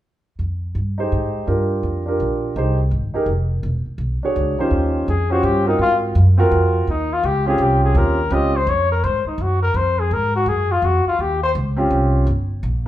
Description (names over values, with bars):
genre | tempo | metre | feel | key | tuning
jazz, small-group swing and bop | 167 BPM | 3/4 | swing 65% on 8ths | Eb mixolydian | A4 = 440 Hz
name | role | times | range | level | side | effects
upright bass | bass | 0.4-12.9 s | E1 to Ab2 | -19 LUFS | equal | none
warm grand piano | accompaniment | 1.0-8.5, 11.8-12.9 s | Eb3 to C#5 | -20 LUFS | right 1 dB | none
trumpet with bucket mute | melody | 5.1-11.5 s | Eb4 to Eb5 | -19 LUFS | left 3 dB | none
room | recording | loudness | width
moderate large studio reverb, RT60 1.0 s | band playing live in one room | -16 LUFS | side -13 dB against mid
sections
0.4-4.7 A section; 4.7-12.9 B section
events
none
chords
0.4 Fm9; 1.5 Gm7; 2.6 Fm9; 3.6 E13; 4.7 Eb13; 5.8 Ab13; 6.9 Eb13; 9.0 Ab13; 11.2 Eb13; 12.3 Gm